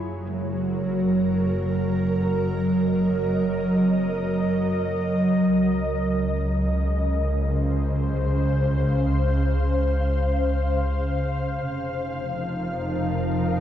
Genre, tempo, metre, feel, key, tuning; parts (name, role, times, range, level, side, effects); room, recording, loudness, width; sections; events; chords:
ambient; free time; Db major; A4 = 440 Hz
ethereal airy pad; sustained chords; 0.0-13.6 s; Db3 to F5; -23 LUFS; equal; ensemble chorus, built-in reverb
handpan; arpeggios; 0.0-7.3 s; Ab3 to Bb4; -43 LUFS; equal
dark studio double bass section; bass; 0.0-13.6 s; F1 to Db2; -26 LUFS; equal
wet concert hall reverb, RT60 2.0 s, small room ambience; cassette tape; -21 LUFS; side -10 dB against mid
0.0-5.5 A section; 5.5-13.6 B section
0.0 Gb6; 5.5 Dbmaj7; 11.6 F7sus4